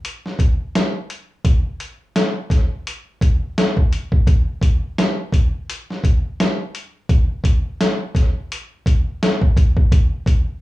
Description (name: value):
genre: hip hop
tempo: 85 BPM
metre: 4/4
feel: swing 59% on 16ths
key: none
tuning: none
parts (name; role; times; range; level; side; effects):
- trip hop sampler-style drum kit; drums; 0.0-10.5 s; hi-hat, kick drum, snare drum; -16 LUFS; equal; none
room: light reverb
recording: small room reverb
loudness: -16 LUFS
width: side -17 dB against mid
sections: 0.0-10.6 A section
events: none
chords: none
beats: 0.04 0.74 | 1.45 2.15 2.86 3.56 | 4.27 4.98 5.68 6.39 | 7.09 7.80 8.51 9.21 | 9.92